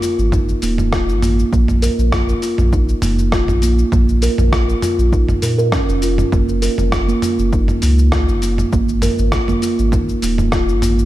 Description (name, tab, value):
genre	organic downtempo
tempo	100 BPM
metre	4/4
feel	swing 53% on 16ths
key	Bb minor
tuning	A4 = 440 Hz
part	steel tongue drum	arpeggios	0.0-11.0 s	Bb3 to Bb4	-18 LUFS	right 2 dB	ping-pong delay
part	dusty soul sampler-style drum kit	drums	0.0-11.1 s	cabasa, hi-hat, rim click, toms	-22 LUFS	equal	small room reverb
part	warm sub bass	bass	0.2-11.0 s	Eb1 to Bb2	-16 LUFS	equal	sidechain pumping
part	electronic kick drum	drums	0.3-10.7 s	none	-20 LUFS	equal	overdrive, small room reverb
room	light reverb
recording	dark, warm production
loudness	-13 LUFS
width	side -15 dB against mid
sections	0.0-11.1 A section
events	none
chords	0.0 Ab5; 1.5 Bb5; 6.3 Gbmaj7; 8.7 Ab5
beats	0.33 0.93 | 1.53 2.13 2.73 3.33 | 3.93 4.53 5.13 5.73 | 6.33 6.93 7.53 8.13 | 8.73 9.33 9.93 10.53